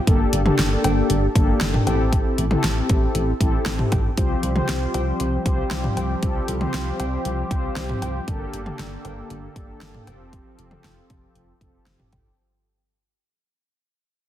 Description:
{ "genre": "synth-pop", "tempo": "117 BPM", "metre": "4/4", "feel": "straight", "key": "C mixolydian", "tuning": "A4 = 439 Hz", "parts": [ { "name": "mellow synth brass", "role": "accompaniment", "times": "0.1-12.3 s", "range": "Bb3 to C5", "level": "-25 LUFS", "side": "left 2 dB", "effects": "chorus" }, { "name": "solid FM bass", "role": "bass", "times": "0.1-12.3 s", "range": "F1 to C2", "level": "-25 LUFS", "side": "equal", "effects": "none" }, { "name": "pop drum kit", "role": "drums", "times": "0.1-12.2 s", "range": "cowbell, hi-hat, kick drum, snare drum, toms", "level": "-23 LUFS", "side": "equal", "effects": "none" }, { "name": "brassy analog pad", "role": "sustained chords", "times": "4.2-12.4 s", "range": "D3 to A4", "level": "-31 LUFS", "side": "left 1 dB", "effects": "chorus" } ], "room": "light reverb, digital ambience", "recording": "dense, heavily limited modern master", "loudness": "-19 LUFS", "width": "side -12 dB against mid", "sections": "0.0-12.4 A section", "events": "fade-out 1.7-12.4", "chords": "0.1 Gmadd9; 1.9 Am7; 4.2 Csus4; 8.3 Gmadd9; 10.1 Fadd9", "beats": "| 0.07 0.59 1.10 1.61 | 2.12 2.64 3.15 3.66 | 4.18 4.69 5.20 5.71 | 6.23 6.74 7.25 7.77 | 8.28 8.79 9.30 9.82 | 10.33 10.84 11.36 11.87" }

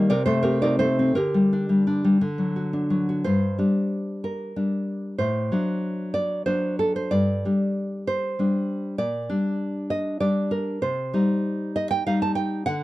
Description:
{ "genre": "romantic piece for solo classical guitar", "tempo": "56-67 BPM (dotted quarters)", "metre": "6/8", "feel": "rubato", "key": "G minor", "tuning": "A4 = 440 Hz", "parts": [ { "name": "nylon-string guitar", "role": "solo", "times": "0.0-12.8 s", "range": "G2 to A5", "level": "-21 LUFS", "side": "equal", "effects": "none" } ], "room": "moderate booth ambience, RT60 0.2 s", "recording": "dry, close 1970s-style studio recording", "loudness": "-22 LUFS", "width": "side -17 dB against mid", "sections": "0.0-3.2 A section; 3.2-12.8 B section", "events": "none", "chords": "0.1 Adim/C; 1.1 Gm/D; 2.2 D; 3.2 Gm; 5.2 D7/A; 7.1 G5; 9.0 Gm/Bb; 10.8 Cm", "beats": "0.10 | 1.14 2.20 | 3.24 4.24 | 5.19 6.14 | 7.13 8.08 | 8.99 9.91 | 10.82 11.76 | 12.67" }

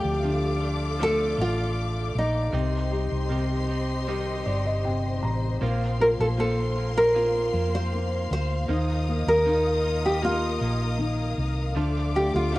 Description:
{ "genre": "pop", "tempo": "78 BPM", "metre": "4/4", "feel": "straight", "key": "Bb major", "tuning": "A4 = 440 Hz", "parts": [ { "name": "nylon-string guitar", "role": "melody", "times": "0.0-12.6 s", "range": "Eb4 to C5", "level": "-25 LUFS", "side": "equal", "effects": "cassette tape" }, { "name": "felt-muted upright piano", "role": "accompaniment", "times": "0.0-12.6 s", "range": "C3 to Bb5", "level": "-31 LUFS", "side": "left 3 dB", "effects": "cassette tape" }, { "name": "warm symphonic string section", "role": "sustained chords", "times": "0.0-12.6 s", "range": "Bb3 to Eb6", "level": "-33 LUFS", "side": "left 2 dB", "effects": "cassette tape" }, { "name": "direct-recorded clean electric guitar", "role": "arpeggios", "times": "0.0-12.6 s", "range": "Bb2 to G4", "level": "-37 LUFS", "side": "right 6 dB", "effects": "cassette tape" }, { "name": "hollow-body short-scale fingered electric bass", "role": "bass", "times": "0.0-12.6 s", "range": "G1 to F2", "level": "-27 LUFS", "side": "equal", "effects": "none" } ], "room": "little or no reverb", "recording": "home recording on cassette", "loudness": "-23 LUFS", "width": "side -18 dB against mid", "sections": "0.0-12.6 A section", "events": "felt piano fill 4.1-5.6", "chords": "0.0 Dm; 2.5 Cm; 5.6 Bbsus2; 8.7 Ebsus2; 11.8 Dm", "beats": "0.23 1.00 1.77 | 2.54 3.31 4.07 4.84 | 5.61 6.38 7.15 7.92 | 8.69 9.46 10.23 11.00 | 11.77 12.54" }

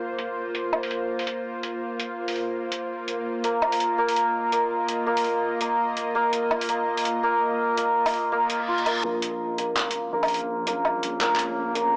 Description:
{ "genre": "half-time drum and bass", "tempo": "166 BPM", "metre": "4/4", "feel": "swing 57% on 16ths, half-time", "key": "Bb minor", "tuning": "A4 = 440 Hz", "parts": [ { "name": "bowed-like drone", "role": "sustained chords", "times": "0.0-12.0 s", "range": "Bb3 to Eb5", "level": "-32 LUFS", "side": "equal", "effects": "built-in reverb" }, { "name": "santur", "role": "arpeggios", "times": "0.0-12.0 s", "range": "Bb3 to F4", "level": "-27 LUFS", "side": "equal", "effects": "low-pass filter, tape echo" }, { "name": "downlifter, reverse cymbal and riser", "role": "sound effects", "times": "0.0-0.4, 8.5-12.0 s", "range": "none", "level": "-38 LUFS", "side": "equal", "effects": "none" }, { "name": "boom bap sampler-style drum kit", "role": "drums", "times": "0.2-11.8 s", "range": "handclaps, hi-hat, woodblock", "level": "-30 LUFS", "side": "equal", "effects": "overdrive, high-pass filter on hats, low-pass filter on hats, high-pass filter on perc, low-pass filter on perc, high-pass filter on snare, low-pass filter on snare, high-pass filter on cymbals, low-pass filter on cymbals, high-pass filter on room, low-pass filter on room" }, { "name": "long sustained 808-style bass", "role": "bass", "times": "9.0-12.0 s", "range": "Bb1", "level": "-40 LUFS", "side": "equal", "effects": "high-pass filter" } ], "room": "moderate lush hall reverb, RT60 1.7 s", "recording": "dry, gritty hardware recording, transformer saturation, small speaker sound", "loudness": "-25 LUFS", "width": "mono", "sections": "0.0-9.0 A section; 9.0-12.0 B section", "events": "reverse cymbal 8.5-9.0; build-up 9.0-12.0; filter sweep on synth drone 9.0-12.0", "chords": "0.0 Bb5; 9.0 Bbm", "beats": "0.01 | 0.37 0.73 1.09 1.45 | 1.81 2.17 2.54 2.90 | 3.26 3.62 3.98 4.34 | 4.70 5.07 5.43 5.79 | 6.15 6.51 6.87 7.23 | 7.59 7.96 8.32 8.68 | 9.04 9.40 9.76 10.13 | 10.49 10.85 11.21 11.57 | 11.93" }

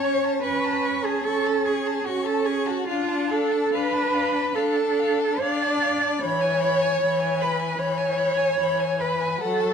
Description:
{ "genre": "classical, slow romantic movement for string quartet", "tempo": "66-78 BPM", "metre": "4/4", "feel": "rubato", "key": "unclear", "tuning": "A4 = 439 Hz", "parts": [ { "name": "rich violin", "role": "melody", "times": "0.0-9.7 s", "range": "F5 to C#6", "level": "-32 LUFS", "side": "left 10 dB", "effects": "none" }, { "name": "rich violin", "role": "second line", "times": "0.0-9.7 s", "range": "F4 to D5", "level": "-28 LUFS", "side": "left 6 dB", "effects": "none" }, { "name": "rich viola", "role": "accompaniment", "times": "0.0-9.7 s", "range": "E3 to D4", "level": "-28 LUFS", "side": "equal", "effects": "none" }, { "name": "warm cello", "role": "bass", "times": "0.0-9.7 s", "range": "F4 to D5", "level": "-24 LUFS", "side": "right 4 dB", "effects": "none" } ], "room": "moderate recital hall reverb, RT60 1.5 s", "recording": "dark, warm production", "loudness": "-21 LUFS", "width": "side -7 dB against mid", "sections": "0.0-9.7 A section", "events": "none", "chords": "0.0 A/C#; 2.9 Dm; 6.2 E", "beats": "0.43 1.25 2.05 | 2.88 3.74 4.56 5.42 | 6.22 7.01 7.79 8.58 | 9.40" }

